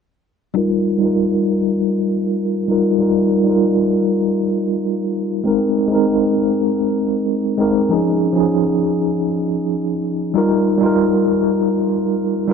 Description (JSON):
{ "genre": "chillout", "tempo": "98 BPM", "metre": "4/4", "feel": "straight", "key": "F minor", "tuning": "A4 = 440 Hz", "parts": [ { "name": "tine electric piano", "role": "accompaniment", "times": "0.5-12.5 s", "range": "F3 to Bb4", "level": "-15 LUFS", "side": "equal", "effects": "fast stereo tremolo, auto-pan, tape echo" } ], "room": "light reverb, digital ambience", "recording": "dry, gritty hardware recording, low-pass filter", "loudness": "-15 LUFS", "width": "side -6 dB against mid", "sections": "0.6-12.5 A section", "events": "filter sweep 0.6-12.5", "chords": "0.6 F9sus4; 5.5 Bb9sus4; 7.9 Eb9sus4; 10.4 F9sus4" }